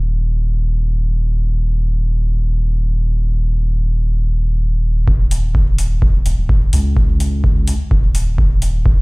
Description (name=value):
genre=dub techno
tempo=127 BPM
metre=4/4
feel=straight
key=unclear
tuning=A4 = 440 Hz
part: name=soft dub sub bass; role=bass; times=0.0-9.0 s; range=Eb1 to Db2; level=-16 LUFS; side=equal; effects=sidechain pumping
part: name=electronic kick drum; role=drums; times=5.1-9.0 s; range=none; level=-14 LUFS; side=equal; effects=none
part: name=electronic hi-hat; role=drums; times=5.3-8.7 s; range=none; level=-28 LUFS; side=left 2 dB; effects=low-pass filter on hats, low-pass filter on room
room=little or no reverb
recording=played on a big sound system in a bare room, large studio reverb, low-pass filter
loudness=-14 LUFS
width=side -29 dB against mid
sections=0.0-5.1 A section; 5.1-9.0 B section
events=filter sweep 0.0-5.1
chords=none